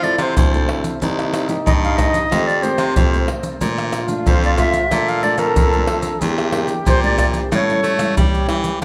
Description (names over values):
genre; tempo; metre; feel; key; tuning
samba and choro; 92 BPM; 4/4; straight; F major; A4 = 441 Hz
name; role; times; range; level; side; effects
bright reedy wooden flute; melody; 0.0-8.1 s; Bb4 to F5; -23 LUFS; equal; tape echo
warm trombone; second line; 0.0-8.8 s; Eb4 to A4; -26 LUFS; equal; none
nylon-string guitar; accompaniment; 0.0-8.8 s; F2 to A4; -28 LUFS; equal; none
edgy baritone saxophone; bass; 0.0-8.8 s; C2 to A3; -24 LUFS; equal; none
pandeiro, maracas, tamborim and surdo; percussion; 0.0-8.8 s; none; -22 LUFS; equal; none
room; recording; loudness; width
moderate large studio reverb, RT60 1.4 s; none; -17 LUFS; mono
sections
0.0-8.8 A section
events
none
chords
0.0 Fmaj7; 1.0 Cm7; 2.3 F7; 3.6 Bbmaj7; 6.2 Em7b5; 7.5 A7